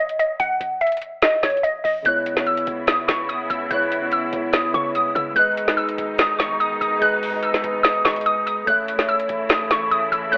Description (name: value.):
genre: hip hop, trap.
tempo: 145 BPM.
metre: 4/4.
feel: half-time.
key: unclear.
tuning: A4 = 444 Hz.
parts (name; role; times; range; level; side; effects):
glassy wavetable pluck; melody; 0.0-10.4 s; C#5 to F#6; -20 LUFS; equal; chorus.
short 808-style bass; bass; 0.0-10.4 s; G#1 to C#3; -36 LUFS; equal; none.
trap drum kit; drums; 0.1-10.4 s; hi-hat, snare drum; -21 LUFS; equal; none.
mellow tine electric piano; accompaniment; 2.0-10.4 s; C#3 to E5; -25 LUFS; equal; lush chorus.
clear symphonic string section; sustained chords; 2.1-10.4 s; B2 to E4; -29 LUFS; equal; none.
room: moderate digital room reverb, RT60 1.1 s, digital ambience.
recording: telephone sound.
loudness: -18 LUFS.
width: side -33 dB against mid.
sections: 0.0-2.1 A section; 2.1-10.4 B section.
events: none.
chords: 0.0 Emaj7/G# (rootless); 2.1 C#m7; 5.4 G#m; 8.7 A.